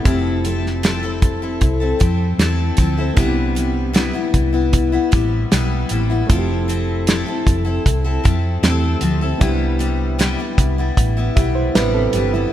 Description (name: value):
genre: indie pop, bedroom pop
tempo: 77 BPM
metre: 4/4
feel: straight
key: C major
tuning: A4 = 440 Hz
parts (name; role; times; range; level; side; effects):
- picked steel-string acoustic guitar; accompaniment; 0.0-12.5 s; C3 to A4; -21 LUFS; left 4 dB; lush chorus, vibrato effect
- reed electric piano; accompaniment; 0.0-12.5 s; G3 to E5; -25 LUFS; right 4 dB; none
- hollow-body short-scale fingered electric bass; bass; 0.1-12.4 s; F1 to F2; -20 LUFS; equal; none
- damped 70s drum kit; drums; 0.1-12.3 s; hi-hat, kick drum, snare drum; -18 LUFS; right 1 dB; none
room: light reverb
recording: none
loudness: -15 LUFS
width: side -12 dB against mid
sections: 0.0-12.5 A section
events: none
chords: 0.1 Fmaj7; 3.2 Cmaj7; 6.3 Fmaj7; 9.4 Cmaj7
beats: | 0.05 0.83 1.61 2.39 | 3.17 3.95 4.73 5.51 | 6.29 7.07 7.85 8.63 | 9.41 10.19 10.97 11.75